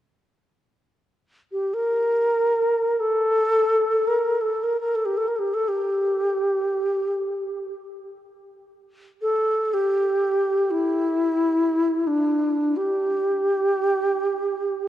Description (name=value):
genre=world meditative, free-time meditation music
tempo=free time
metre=none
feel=none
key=G kumoi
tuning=A4 = 440 Hz
part: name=bright reedy low xiao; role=solo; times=1.5-14.9 s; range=D4 to Bb4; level=-20 LUFS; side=equal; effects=none
room=wet cathedral reverb, RT60 4.8 s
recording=worn, warbling old tape, cassette tape, warbly pitch drift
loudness=-20 LUFS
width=side -12 dB against mid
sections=0.4-14.9 A section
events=none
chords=none